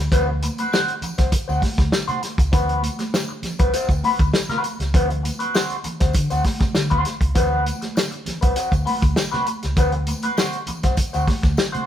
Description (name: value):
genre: funk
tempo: 100 BPM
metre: 4/4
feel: straight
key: unclear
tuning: A4 = 440 Hz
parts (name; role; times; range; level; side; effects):
- clean electric guitar; accompaniment; 0.0-11.9 s; C4 to C5; -24 LUFS; left 2 dB; wah
- vintage muted fingered electric bass; bass; 0.0-11.8 s; C2 to D3; -24 LUFS; equal; none
- tambourine; percussion; 0.0-11.7 s; none; -38 LUFS; left 2 dB; none
- warm soul drum kit; drums; 0.1-11.9 s; hi-hat, kick drum, snare drum; -20 LUFS; equal; none
- congas; percussion; 0.1-11.9 s; none; -32 LUFS; right 2 dB; none
room: light reverb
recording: band playing live in one room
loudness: -18 LUFS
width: side -10 dB against mid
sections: 0.0-11.9 A section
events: none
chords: 0.0 D6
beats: | 0.12 0.72 1.32 1.93 | 2.53 3.13 3.74 4.34 | 4.94 5.55 6.15 6.75 | 7.36 7.96 8.56 9.17 | 9.77 10.37 10.97 11.58